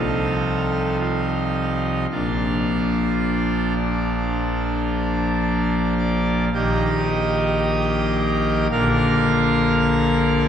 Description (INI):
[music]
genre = classical, chorale-style piece for pipe organ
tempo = 54 BPM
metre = 4/4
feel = rubato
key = Bb major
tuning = A4 = 440 Hz
[part]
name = pipe organ, full organ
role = solo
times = 0.0-10.5 s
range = Bb1 to F5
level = -18 LUFS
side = equal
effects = none
[sound]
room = wet church reverb, RT60 3.0 s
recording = recorded in a church or concert hall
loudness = -18 LUFS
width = side -8 dB against mid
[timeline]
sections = 0.0-10.5 A section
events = none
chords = 0.0 F7/C; 2.1 Bb; 6.5 Eb/Bb; 8.7 Bb